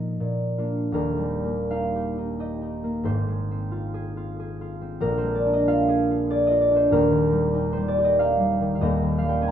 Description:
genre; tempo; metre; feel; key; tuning
classical, solo harp piece; 74-99 BPM; 3/4; rubato; Eb major; A4 = 438 Hz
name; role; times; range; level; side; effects
concert harp; solo; 0.0-9.5 s; Eb1 to Bb5; -21 LUFS; equal; none
room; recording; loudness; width
wet stone room reverb, RT60 0.9 s; heard from further back in the room; -21 LUFS; side -9 dB against mid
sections
0.9-9.5 A section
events
none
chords
0.2 Bb; 0.9 Eb; 3.0 Fm/Ab; 5.0 Bb7; 6.9 Eb; 8.8 Eb7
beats
0.21 | 0.94 1.71 2.39 | 3.04 3.71 4.38 | 5.02 5.66 6.29 | 6.91 7.54 8.18 | 8.79 9.41

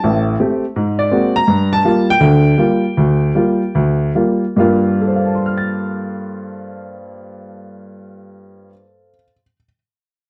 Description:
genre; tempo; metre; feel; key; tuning
solo jazz; 140-165 BPM; 4/4; swing 64% on 8ths; G minor; A4 = 439 Hz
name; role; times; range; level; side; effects
warm upright piano; solo; 0.0-9.7 s; A1 to A6; -16 LUFS; equal; slapback echo
room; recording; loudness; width
light reverb; dry, close 1970s-style studio recording; -15 LUFS; mono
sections
0.0-4.6 A section; 4.6-8.0 B section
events
slowing down 1.5-4.6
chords
0.0 Am7; 0.7 Ab9; 1.5 Gm7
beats
| 0.02 0.38 0.75 1.11 | 1.48 1.84 2.21 2.58 | 2.96 3.34 3.74 4.15 | 4.57 4.99 5.42 5.85 | 6.28 6.70 7.13 7.56

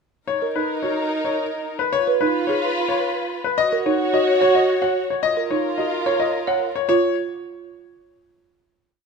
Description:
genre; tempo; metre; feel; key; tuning
classical, minimalist pattern music; 109 BPM; 3/4; straight; B lydian; A4 = 440 Hz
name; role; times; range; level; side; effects
bright baby grand piano; melody; 0.3-7.1 s; B4 to F#5; -22 LUFS; left 7 dB; none
warm French horn; second line; 0.3-6.7 s; D#4 to F#4; -25 LUFS; right 3 dB; none
dark symphonic string section; sustained chords; 0.3-6.7 s; D#4 to C#5; -25 LUFS; left 2 dB; none
folk marimba with medium mallets; arpeggios; 0.4-7.1 s; D#4 to C#5; -23 LUFS; right 8 dB; none
room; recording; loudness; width
moderate recital hall reverb, RT60 1.7 s; none; -18 LUFS; side -5 dB against mid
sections
0.3-6.9 A section; 6.9-8.5 final chord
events
none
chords
0.3 Bmaj9 (rootless); 1.9 C#7; 3.6 D#m7; 5.2 F#maj7 (rootless); 6.9 N.C.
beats
| 0.28 0.83 1.38 | 1.93 2.48 3.04 | 3.58 4.13 4.69 | 5.24 5.79 6.34 | 6.89

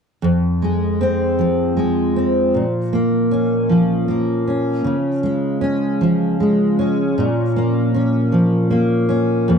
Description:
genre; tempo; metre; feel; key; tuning
pop; 52 BPM (dotted quarters); 6/8; straight; Bb minor; A4 = 440 Hz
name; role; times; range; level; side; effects
fingerpicked steel-string acoustic guitar; accompaniment; 0.2-9.6 s; F2 to Db4; -15 LUFS; equal; double-tracked left and right
room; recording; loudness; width
light reverb; dry, close 1970s-style studio recording; -15 LUFS; side -6 dB against mid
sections
0.2-9.5 A section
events
none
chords
0.2 Fm; 2.5 Bbm; 4.9 Db; 7.2 Bbm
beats
| 0.23 1.39 | 2.55 3.70 | 4.85 6.01 | 7.16 8.32 | 9.48

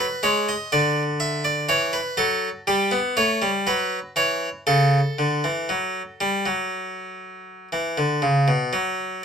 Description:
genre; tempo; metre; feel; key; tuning
classical, baroque-style two-part invention for harpsichord; 60 BPM; 4/4; straight; unclear; A4 = 442 Hz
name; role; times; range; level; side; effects
harpsichord; solo; 0.0-9.2 s; B2 to E5; -20 LUFS; equal; none
room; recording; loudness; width
moderate studio reverb, RT60 0.7 s; minimal, uncompressed stereo recording; -20 LUFS; side -7 dB against mid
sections
0.0-8.7 A section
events
none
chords
0.0 B; 0.7 D; 2.7 Em/G; 4.7 A/C#; 8.7 N.C.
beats
| 0.71 1.69 2.67 3.66 | 4.66 5.68 6.70 7.71 | 8.72

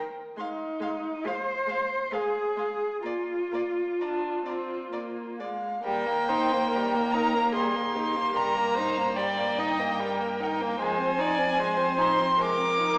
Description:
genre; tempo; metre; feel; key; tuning
classical, slow romantic movement for string quartet; 62-76 BPM; 3/4; rubato; Eb major; A4 = 444 Hz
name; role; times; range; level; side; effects
dark violin; melody; 0.0-13.0 s; F5 to D6; -32 LUFS; equal; none
warm violin; second line; 0.0-13.0 s; G3 to F5; -34 LUFS; equal; none
rich viola; accompaniment; 0.0-13.0 s; Ab3 to Eb5; -32 LUFS; equal; none
dark cello; bass; 0.4-13.0 s; Eb2 to C5; -34 LUFS; equal; none
room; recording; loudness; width
wet recital hall reverb, RT60 1.6 s; recorded in a church or concert hall, small speaker sound; -28 LUFS; mono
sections
0.0-5.8 A section; 5.8-13.0 B section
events
none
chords
0.4 Ab; 3.0 Bb; 5.8 Eb; 8.3 Eb/G; 10.8 Fm7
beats
| 0.39 1.26 2.12 | 3.05 4.01 4.93 | 5.84 6.70 7.53 | 8.35 9.17 10.00 | 10.81 11.60 12.41

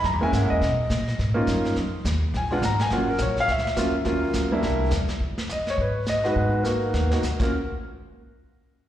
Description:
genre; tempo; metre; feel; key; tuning
jazz piano trio; 209 BPM; 4/4; swing 60% on 8ths; Eb minor; A4 = 440 Hz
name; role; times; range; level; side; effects
clear concert grand piano; melody; 0.0-7.5 s; Gb3 to Bb5; -24 LUFS; equal; slapback echo
upright bass; bass; 0.0-7.5 s; Gb1 to B2; -26 LUFS; equal; none
vintage brush drum kit; drums; 0.0-7.4 s; brushed snare drum, crash cymbal, hi-hat, kick drum, snare drum; -31 LUFS; equal; slapback echo
room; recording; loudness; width
light reverb; live gig heard through the venue's PA, recital hall reverb; -21 LUFS; side -12 dB against mid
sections
0.0-5.2 A section; 5.2-7.5 B section; 7.5-8.7 C section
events
drum fill 6.6-7.2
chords
0.0 Gb9; 0.6 Bmaj9#11; 1.8 Ebsus2; 2.3 Bb7(no3); 2.9 Ebm9; 4.6 C7; 5.2 Fm7b5; 6.4 Abm7; 7.4 Ebm9; 7.5 N.C.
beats
0.04 0.33 | 0.61 0.90 1.19 1.47 | 1.76 2.05 2.33 2.62 | 2.91 3.19 3.48 3.77 | 4.05 4.34 4.63 4.92 | 5.20 5.49 5.78 6.07 | 6.35 6.64 6.93 7.22 | 7.50

